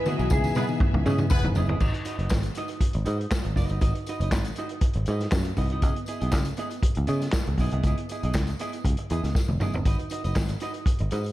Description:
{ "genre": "disco", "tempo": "119 BPM", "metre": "4/4", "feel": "straight", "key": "C# minor", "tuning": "A4 = 440 Hz", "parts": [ { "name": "mellow electric guitar", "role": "melody", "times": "0.0-0.8 s", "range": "F#4 to G#4", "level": "-31 LUFS", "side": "left 1 dB", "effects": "analog chorus" }, { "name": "clear symphonic string section", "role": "second line", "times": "0.0-1.8 s", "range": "B3 to E5", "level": "-37 LUFS", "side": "left 2 dB", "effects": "slapback echo" }, { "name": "tine electric piano", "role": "accompaniment", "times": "0.0-1.6 s", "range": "C#3 to D#4", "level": "-33 LUFS", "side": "left 4 dB", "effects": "none" }, { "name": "percussive tonewheel organ", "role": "sustained chords", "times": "0.0-1.8 s", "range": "E3 to E4", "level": "-37 LUFS", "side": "left 1 dB", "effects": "none" }, { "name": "clean electric guitar", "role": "accompaniment", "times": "0.1-11.3 s", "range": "B3 to D#5", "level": "-34 LUFS", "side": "right 3 dB", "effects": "none" }, { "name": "vintage drum kit", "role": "drums", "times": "0.1-11.3 s", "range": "crash cymbal, handclaps, hi-hat, kick drum, snare drum, toms", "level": "-26 LUFS", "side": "equal", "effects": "none" }, { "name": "tambourine", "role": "percussion", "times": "0.1-11.3 s", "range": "none", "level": "-46 LUFS", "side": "left 6 dB", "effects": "none" }, { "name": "picked electric bass", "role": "bass", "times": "0.2-11.3 s", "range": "E#1 to C#3", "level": "-26 LUFS", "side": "equal", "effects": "none" }, { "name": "warm horn section", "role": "stabs", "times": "0.6-1.5 s", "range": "B3 to B4", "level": "-37 LUFS", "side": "left 3 dB", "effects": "none" } ], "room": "small room ambience", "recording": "dark, warm production", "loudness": "-23 LUFS", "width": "side -16 dB against mid", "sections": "0.0-1.8 A section; 1.8-11.3 B section", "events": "drum fill 0.0-1.8, 9.3-9.8; clean electric guitar solo 0.0-1.8", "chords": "0.0 C#m9; 1.8 G#m7; 5.8 C#m9; 9.8 G#m7" }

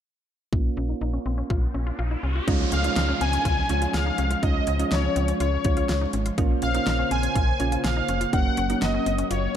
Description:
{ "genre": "synth-pop", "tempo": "123 BPM", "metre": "4/4", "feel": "straight", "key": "unclear", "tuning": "A4 = 444 Hz", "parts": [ { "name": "soft electric-piano-like synth keys", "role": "accompaniment", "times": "0.5-9.4 s", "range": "Ab3 to Gb4", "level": "-30 LUFS", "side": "right 7 dB", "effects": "chorus, low-pass filter" }, { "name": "resonant blip pluck", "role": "arpeggios", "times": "0.5-9.5 s", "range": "C4 to F4", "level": "-34 LUFS", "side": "left 5 dB", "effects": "chorus, low-pass filter, ping-pong delay" }, { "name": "slap-like FM bass", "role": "bass", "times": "0.5-9.5 s", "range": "F1 to Db2", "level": "-26 LUFS", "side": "equal", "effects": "none" }, { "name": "pop drum kit", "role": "drums", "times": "0.5-9.4 s", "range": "hi-hat, kick drum, snare drum", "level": "-27 LUFS", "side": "equal", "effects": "none" }, { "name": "riser and downlifter", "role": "sound effects", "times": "1.4-6.4 s", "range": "none", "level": "-34 LUFS", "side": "equal", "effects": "none" }, { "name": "chorused pulse-width pad", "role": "sustained chords", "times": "2.5-9.6 s", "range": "Db3 to C5", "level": "-32 LUFS", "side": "left 2 dB", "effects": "none" }, { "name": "analog synth brass", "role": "melody", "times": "2.7-9.6 s", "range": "Db5 to Ab5", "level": "-27 LUFS", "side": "left 1 dB", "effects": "chorus" } ], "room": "light reverb, digital ambience", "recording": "dark, warm production", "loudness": "-21 LUFS", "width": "side -9 dB against mid", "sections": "0.5-2.5 A section; 2.5-9.6 B section", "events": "filter sweep 0.5-2.5; riser 1.4-2.5", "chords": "0.5 Bbm; 2.5 Db; 6.4 Bbmadd9; 8.3 Gb" }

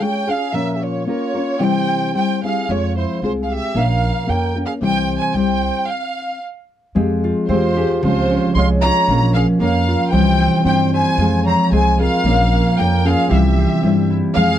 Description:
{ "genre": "mexican folk, mariachi", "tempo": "113 BPM", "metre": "2/4", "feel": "straight", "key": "F harmonic minor", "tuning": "A4 = 444 Hz", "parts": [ { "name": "warm studio violin section", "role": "melody", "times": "0.0-14.6 s", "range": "C5 to C6", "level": "-20 LUFS", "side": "equal", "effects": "none" }, { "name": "dark trumpet", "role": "second line", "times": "0.0-14.6 s", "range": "E4 to F5", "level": "-27 LUFS", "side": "right 6 dB", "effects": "none" }, { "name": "nylon-string guitar", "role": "accompaniment", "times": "0.0-14.6 s", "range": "Bb2 to Db5", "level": "-19 LUFS", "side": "left 3 dB", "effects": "none" }, { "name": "concert harp", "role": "arpeggios", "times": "0.0-0.9, 7.0-14.6 s", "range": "E3 to G4", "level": "-19 LUFS", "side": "right 2 dB", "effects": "none" }, { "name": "upright bass", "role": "bass", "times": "2.7-14.6 s", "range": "Bb1 to G2", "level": "-20 LUFS", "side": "right 1 dB", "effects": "transformer saturation" } ], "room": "little or no reverb", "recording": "dry, close 1970s-style studio recording", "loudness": "-14 LUFS", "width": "side -11 dB against mid", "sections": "0.0-6.9 A section; 6.9-14.6 A section", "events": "stop 5.9-6.9", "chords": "0.0 Db; 0.5 Bbm; 1.6 C; 2.7 Fm; 3.7 Bbm; 4.8 C; 5.9 N.C.; 6.9 Fmadd9; 8.0 Db; 9.1 Bbm; 10.1 C; 11.2 Fm; 12.2 Bbm; 13.3 C" }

